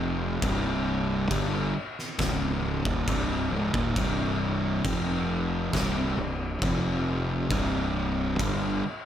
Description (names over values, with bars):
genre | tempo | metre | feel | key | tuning
stoner and doom metal | 68 BPM | 4/4 | straight | C minor | A4 = 439 Hz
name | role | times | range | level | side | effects
fuzz guitar | riff | 0.0-8.8 s | C2 to G3 | -28 LUFS | equal | distortion
fuzz fingered electric bass | bass | 0.0-8.8 s | C1 to G1 | -31 LUFS | equal | overdrive
oversized low-tuned drum kit | drums | 0.4-8.6 s | crash cymbal, kick drum, snare drum | -31 LUFS | equal | none
room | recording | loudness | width
little or no reverb | none | -25 LUFS | side -10 dB against mid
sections
0.0-9.1 A section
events
none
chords
0.4 Cm; 4.9 F5; 5.7 C5; 6.6 F5; 7.5 C5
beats
| 0.43 1.31 2.20 3.08 | 3.97 4.85 5.74 6.62 | 7.51 8.40